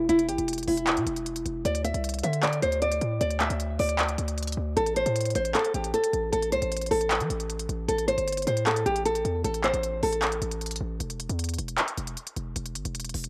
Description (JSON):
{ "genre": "hip hop, trap", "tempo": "154 BPM", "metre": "4/4", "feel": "half-time", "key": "A minor", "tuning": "A4 = 445 Hz", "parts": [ { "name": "nylon-string guitar", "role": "melody", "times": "0.0-11.0 s", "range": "E4 to E5", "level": "-29 LUFS", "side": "equal", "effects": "low-pass filter" }, { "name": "hard-hitting 808-style bass", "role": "bass", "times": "0.0-13.3 s", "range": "E1 to E3", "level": "-33 LUFS", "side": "equal", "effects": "none" }, { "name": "trap drum kit", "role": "drums", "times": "0.1-13.3 s", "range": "handclaps, hi-hat", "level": "-33 LUFS", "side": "equal", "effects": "cassette tape" } ], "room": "light reverb", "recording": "home recording on cassette", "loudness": "-27 LUFS", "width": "mono", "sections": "0.0-13.3 A section", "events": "break 11.0-13.3", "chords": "0.0 Em; 1.7 Dsus2; 4.8 Am; 11.0 N.C." }